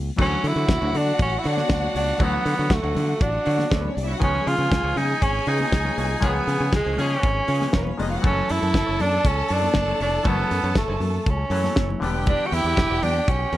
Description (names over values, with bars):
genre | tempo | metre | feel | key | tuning
disco | 119 BPM | 4/4 | straight | D major | A4 = 440 Hz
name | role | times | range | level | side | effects
modern bright fingered electric bass | bass | 0.0-13.6 s | E1 to D3 | -25 LUFS | equal | none
clear tenor saxophone | melody | 0.2-13.6 s | G#3 to F#4 | -24 LUFS | right 2 dB | none
rich studio violin section | second line | 0.2-13.6 s | A3 to A5 | -29 LUFS | left 1 dB | none
clean electric guitar | accompaniment | 0.2-13.6 s | D4 to D5 | -35 LUFS | right 6 dB | none
mellow clav | accompaniment | 0.2-13.6 s | D3 to C#5 | -33 LUFS | left 4 dB | none
damped 70s drum kit | drums | 0.2-13.6 s | crash cymbal, hi-hat, kick drum, snare drum | -24 LUFS | equal | none
congas | percussion | 0.2-13.6 s | none | -34 LUFS | left 5 dB | none
warm horn section | stabs | 6.2-7.3 s | E#3 to G#4 | -33 LUFS | left 2 dB | none
room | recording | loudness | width
light reverb | dark, warm production | -19 LUFS | side -14 dB against mid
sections
0.2-13.6 A section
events
band accent 6.2-8.2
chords
0.2 Dmaj7; 4.2 C#7; 8.2 F#m7; 12.0 Em7